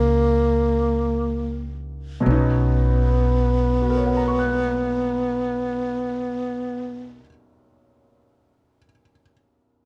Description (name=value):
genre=jazz ballad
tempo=39 BPM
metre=4/4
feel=swing 68% on 8ths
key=B major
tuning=A4 = 440 Hz
part: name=breathy tenor saxophone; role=melody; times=0.0-7.3 s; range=A#3 to B3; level=-25 LUFS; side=equal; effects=none
part: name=clear baby grand piano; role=accompaniment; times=0.0-9.9 s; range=B2 to F#6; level=-30 LUFS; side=equal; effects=none
part: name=upright bass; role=bass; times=0.0-7.2 s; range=B1 to C#2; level=-25 LUFS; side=equal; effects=none
room=little or no reverb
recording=dark, warm production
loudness=-22 LUFS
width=mono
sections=0.0-2.3 A section; 2.3-8.5 B section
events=slowing down 0.0-2.3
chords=0.0 F#7b9; 2.3 Bmaj9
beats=0.75 | 2.26 3.81 5.37 6.91